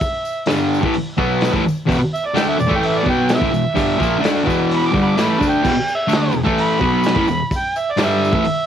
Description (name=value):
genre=garage rock duo or trio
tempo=128 BPM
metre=4/4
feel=straight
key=unclear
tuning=A4 = 440 Hz
part: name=overdriven harmonica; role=melody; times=0.0-8.7 s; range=D5 to D6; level=-21 LUFS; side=right 2 dB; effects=cassette tape
part: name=vintage drum kit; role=drums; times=0.0-8.6 s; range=crash cymbal, hi-hat, kick drum, snare drum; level=-23 LUFS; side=equal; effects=none
part: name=tambourine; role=percussion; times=0.0-8.5 s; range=none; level=-42 LUFS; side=left 10 dB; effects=none
part: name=fuzz guitar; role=riff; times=0.5-8.5 s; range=E2 to D4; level=-16 LUFS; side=equal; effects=distortion
room=moderate studio reverb, RT60 0.6 s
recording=home recording on cassette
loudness=-15 LUFS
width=side -9 dB against mid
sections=0.0-8.7 A section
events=harmonica solo 0.0-8.7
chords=0.0 E5